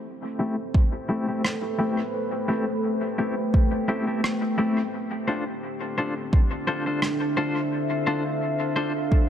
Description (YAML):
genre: ambient dub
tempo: 86 BPM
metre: 4/4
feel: swing 54% on 16ths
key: A minor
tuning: A4 = 440 Hz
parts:
  - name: deep dark ambient pad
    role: sustained chords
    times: 0.0-9.3 s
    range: A3 to G5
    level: -27 LUFS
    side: equal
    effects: chorus, built-in reverb
  - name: clean electric guitar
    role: stabs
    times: 0.4-8.9 s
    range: A3 to C5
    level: -28 LUFS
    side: left 2 dB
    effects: tremolo, low-pass filter, dub echo
  - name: electronic kick drum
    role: drums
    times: 0.7-9.3 s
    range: none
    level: -19 LUFS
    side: equal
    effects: overdrive
  - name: rim click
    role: drums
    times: 1.4-7.2 s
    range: none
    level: -30 LUFS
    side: right 1 dB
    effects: dub echo
room: moderate echo chamber reverb, RT60 2.8 s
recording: none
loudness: -23 LUFS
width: side -9 dB against mid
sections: 0.0-9.3 A section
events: filter sweep on clean electric guitar 0.0-9.3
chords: 0.0 Am7; 4.9 Dm7